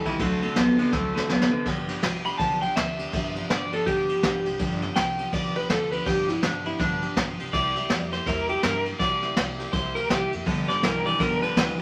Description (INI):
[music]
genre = rockabilly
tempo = 164 BPM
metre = 4/4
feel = swing 61% on 8ths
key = G mixolydian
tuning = A4 = 435 Hz
[part]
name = electric guitar through a small old amp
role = melody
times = 0.0-11.8 s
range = D4 to B5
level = -29 LUFS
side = equal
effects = none
[part]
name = picked steel-string acoustic guitar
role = accompaniment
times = 0.0-11.8 s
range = G2 to A4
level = -34 LUFS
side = equal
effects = none
[part]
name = electric guitar through a small old amp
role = riff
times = 0.0-1.6, 10.5-11.8 s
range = G2 to B3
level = -27 LUFS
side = equal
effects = harmonic tremolo
[part]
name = upright bass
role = bass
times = 0.0-11.8 s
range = G1 to G2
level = -39 LUFS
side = equal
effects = none
[part]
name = jazz brush drum kit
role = drums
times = 0.1-11.8 s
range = crash cymbal, kick drum, ride cymbal, snare drum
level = -30 LUFS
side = equal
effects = none
[sound]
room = moderate studio reverb, RT60 0.5 s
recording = vinyl crackle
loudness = -25 LUFS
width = mono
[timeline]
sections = 0.0-1.7 A section; 1.7-11.8 B section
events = drum fill 0.9-1.7; clean electric guitar solo 1.7-11.8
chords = 0.2 D7; 1.7 G7; 7.5 C7; 10.5 G7